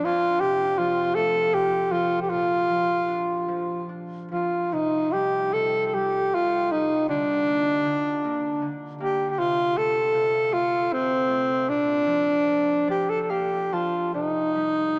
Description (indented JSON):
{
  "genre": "celtic folk, Celtic slow air",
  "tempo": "70-81 BPM",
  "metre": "3/4",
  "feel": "rubato",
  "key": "unclear",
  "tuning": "A4 = 439 Hz",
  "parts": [
    { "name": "breathy alto saxophone", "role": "melody", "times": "0.0-15.0 s", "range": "C4 to A4", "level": "-24 LUFS", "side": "equal", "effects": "none" },
    { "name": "concert harp", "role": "accompaniment", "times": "0.0-15.0 s", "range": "F2 to A5", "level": "-38 LUFS", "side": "equal", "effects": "none" }
  ],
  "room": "wet cathedral reverb, RT60 5.9 s",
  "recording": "small speaker sound",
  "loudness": "-24 LUFS",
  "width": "mono",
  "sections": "0.0-14.1 A section",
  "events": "harp fill 12.5-14.1",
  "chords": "0.0 F; 2.3 Bb; 4.7 C5; 7.1 Bb/D; 9.4 F/C; 11.7 Bb; 14.1 Cm",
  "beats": "| 0.04 0.78 1.53 | 2.30 3.08 3.89 | 4.72 5.53 6.32 | 7.08 7.85 8.61 | 9.37 10.13 10.90 | 11.67 12.46 13.29 | 14.13 14.95"
}